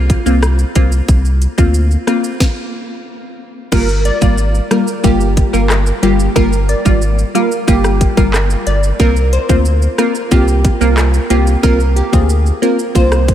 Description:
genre	dancehall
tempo	91 BPM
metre	4/4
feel	straight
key	G phrygian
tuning	A4 = 440 Hz
part	saturated sub bass	bass	0.0-13.3 s	G1 to D2	-13 LUFS	equal	none
part	island pop drum kit	drums	0.1-13.3 s	crash cymbal, handclaps, hi-hat, kick drum, rim click, shaker, snare drum	-16 LUFS	equal	overdrive
part	wavetable chord stab	accompaniment	0.3-13.3 s	G3 to F4	-17 LUFS	left 1 dB	sidechain pumping
part	glassy wavetable pluck	melody	3.7-13.1 s	G4 to D5	-19 LUFS	right 2 dB	chorus, analog delay
room	moderate cathedral reverb, RT60 5.1 s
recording	dreamy mix soaked in reverb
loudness	-11 LUFS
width	side -11 dB against mid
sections	0.0-3.7 A section; 3.7-13.3 B section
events	stop 2.4-3.7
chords	0.0 C7sus4; 3.7 Gm7; 9.0 C7sus4

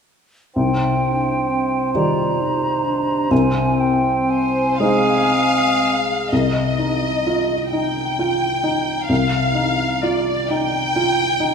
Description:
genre	cinematic, emotional film score for orchestra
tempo	39-45 BPM (dotted quarters)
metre	6/8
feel	rubato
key	C minor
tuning	A4 = 440 Hz
part	mellow clarinet	second line	0.6-5.9 s	C4 to F4	-23 LUFS	equal	none
part	mellow cor anglais	second line	0.6-5.9 s	C5 to Eb5	-24 LUFS	right 5 dB	none
part	silver concert flute	second line	0.6-6.0 s	G5 to Bb5	-22 LUFS	equal	none
part	felt-muted upright piano	accompaniment	0.6-11.5 s	C2 to D5	-20 LUFS	left 1 dB	none
part	warm studio violin section	melody	4.3-11.5 s	C5 to G5	-21 LUFS	left 2 dB	none
room	wet scoring stage reverb, RT60 2.0 s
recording	minimal, uncompressed stereo recording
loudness	-16 LUFS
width	side -6 dB against mid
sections	0.6-6.3 A section; 6.3-11.5 B section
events	none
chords	0.6 Cmadd9; 3.3 Ab/C; 6.3 Cmadd11

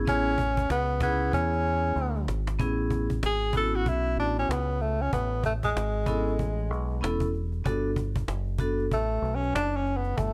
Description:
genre	hip hop, jazz-hop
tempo	95 BPM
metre	4/4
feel	swing 60% on 16ths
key	A major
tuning	A4 = 439 Hz
part	vibraphone with medium hard mallets	accompaniment	0.0-8.8 s	B3 to A4	-34 LUFS	equal	plate reverb
part	deep dub fingered electric bass	bass	0.0-10.3 s	E1 to E2	-32 LUFS	equal	none
part	breathy tenor saxophone	melody	0.1-10.3 s	G#3 to A4	-30 LUFS	equal	plate reverb
part	cajon	drums	0.1-10.3 s	none	-35 LUFS	equal	none
room	light reverb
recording	dark, warm production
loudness	-28 LUFS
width	mono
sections	0.0-2.6 A section; 2.6-10.3 B section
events	drum fill 2.0-2.6; tenor saxophone solo 2.6-10.3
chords	0.0 Amaj9; 7.7 Gmaj9

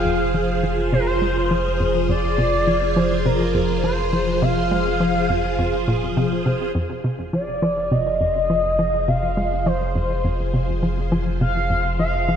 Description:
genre	ambient, sequencer-driven space music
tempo	103 BPM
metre	4/4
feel	straight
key	F dorian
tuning	A4 = 439 Hz
part	expressive portamento lead	melody	0.0-12.4 s	Bb4 to F5	-23 LUFS	equal	wide subtle chorus, cassette tape, shimmer reverb, tape echo
part	phased string machine	sustained chords	0.0-12.4 s	F3 to C5	-24 LUFS	equal	ensemble chorus, phaser, shimmer reverb
part	warm sub bass	bass	0.0-12.4 s	F1	-26 LUFS	equal	none
part	hollow square pluck	riff	0.1-12.4 s	F2 to Ab3	-24 LUFS	equal	chorus, tape echo
part	pulsing gated texture	texture	6.8-12.4 s	F5	-42 LUFS	right 2 dB	none
room	wet plate reverb, RT60 3.0 s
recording	dreamy mix soaked in reverb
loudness	-18 LUFS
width	side -8 dB against mid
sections	0.0-6.8 A section; 6.8-12.4 B section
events	filter sweep on synth arpeggio sound 0.0-6.8; fade-in on string machine 6.8-12.4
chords	0.0 Fm

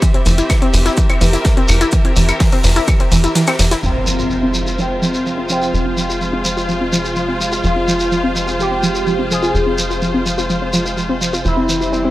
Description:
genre	melodic techno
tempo	126 BPM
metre	4/4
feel	straight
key	F harmonic minor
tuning	A4 = 438 Hz
part	warbly dusty pluck	arpeggios	0.0-12.1 s	E3 to F4	-20 LUFS	equal	chorus, sidechain pumping, tape echo
part	big rock drum kit	drums	0.0-3.8 s	hi-hat, shaker, snare drum	-28 LUFS	left 1 dB	high-pass filter on hats, high-pass filter on snare, high-pass filter on perc, high-pass filter on room
part	electronic hi-hat and claves	drums	0.0-3.8 s	none	-22 LUFS	left 1 dB	low-pass filter on hats, low-pass filter on perc, low-pass filter on room
part	electronic kick drum	drums	0.0-3.0 s	none	-14 LUFS	equal	overdrive
part	shekere	percussion	0.0-12.0 s	none	-24 LUFS	equal	none
part	rich studio string section	texture	0.0-12.1 s	C4 to F5	-22 LUFS	left 1 dB	sidechain pumping
part	tight sequencer bass	bass	0.3-12.1 s	F1	-20 LUFS	equal	sidechain pumping
part	resonant sweep polysynth	melody	3.8-12.1 s	C4 to Ab4	-21 LUFS	equal	chorus, phaser, analog delay
part	lush unison pad	sustained chords	3.8-12.1 s	C3 to F4	-25 LUFS	equal	chorus, sidechain pumping
part	impact	sound effects	3.8-5.7 s	none	-25 LUFS	equal	none
room	light reverb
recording	dry, gritty hardware recording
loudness	-13 LUFS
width	side -16 dB against mid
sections	0.0-3.8 A section; 3.8-12.1 B section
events	kick drops out 3.4-3.8; impact 3.8-5.7; filter sweep on synth arpeggio sound 3.8-12.1; filter sweep on analog polysynth 3.8-12.1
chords	0.0 C/F; 3.8 Fm; 11.4 C/F

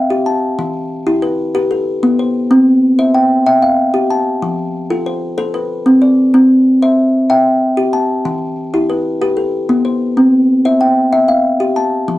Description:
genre	southern african traditional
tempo	125 BPM (dotted quarters)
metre	12/8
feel	straight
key	C major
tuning	A4 = 436 Hz
part	kalimba	solo	0.0-12.2 s	E3 to A5	-11 LUFS	equal	none
room	wet small room ambience, RT60 0.5 s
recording	cassette tape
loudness	-11 LUFS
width	side -16 dB against mid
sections	0.0-12.2 A section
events	none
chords	0.0 N.C.; 0.6 Em; 2.5 C; 4.4 F; 6.3 C; 8.3 Em; 10.2 C

